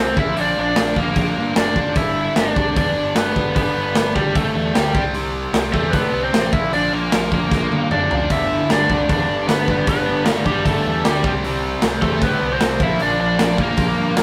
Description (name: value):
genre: punk rock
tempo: 152 BPM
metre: 4/4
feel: straight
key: unclear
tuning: A4 = 440 Hz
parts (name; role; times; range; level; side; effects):
- biting lead guitar; melody; 0.0-14.2 s; G3 to E5; -23 LUFS; equal; overdrive
- distorted electric guitar; riff; 0.0-14.2 s; G2 to C4; -28 LUFS; equal; distortion
- fuzz picked electric bass; bass; 0.0-14.2 s; F1 to A2; -28 LUFS; equal; overdrive
- big rock drum kit; drums; 0.2-14.2 s; hi-hat, kick drum, snare drum, toms; -23 LUFS; equal; none
- overdriven electric guitar; riff; 8.3-14.2 s; G2 to C4; -27 LUFS; equal; none
room: moderate studio reverb, RT60 0.7 s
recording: rough rehearsal-room recording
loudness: -18 LUFS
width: mono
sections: 0.0-14.2 A section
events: drum fill 7.5-8.3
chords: 0.2 Bb; 2.0 G; 4.9 C5; 6.5 Bb; 8.3 G; 11.2 C5; 12.8 Bb